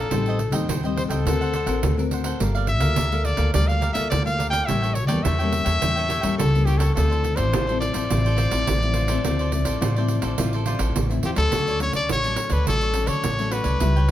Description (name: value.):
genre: samba and choro.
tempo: 105 BPM.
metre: 4/4.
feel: straight.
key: D minor.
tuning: A4 = 439 Hz.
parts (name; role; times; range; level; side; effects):
clear trumpet; melody; 0.0-14.1 s; G4 to G5; -25 LUFS; left 2 dB; plate reverb.
cavaquinho; accompaniment; 0.0-14.1 s; D4 to G5; -32 LUFS; right 3 dB; none.
nylon-string guitar; accompaniment; 0.0-14.1 s; A2 to Bb4; -29 LUFS; left 5 dB; none.
upright bass; bass; 0.0-14.1 s; G1 to D3; -23 LUFS; equal; none.
pandeiro; percussion; 0.1-14.1 s; none; -28 LUFS; right 4 dB; none.
room: light reverb.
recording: none.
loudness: -20 LUFS.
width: side -12 dB against mid.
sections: 0.0-11.5 A section; 11.5-14.1 B section.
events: none.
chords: 0.1 Am7b5; 1.3 D7b13; 2.4 Gm9; 4.7 A7b9; 7.0 Dm9; 11.5 Dmaj7.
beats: | 0.12 0.69 1.26 1.83 | 2.40 2.97 3.54 4.11 | 4.68 5.25 5.83 6.39 | 6.96 7.54 8.11 8.68 | 9.25 9.82 10.39 10.96 | 11.53 12.10 12.67 13.24 | 13.82.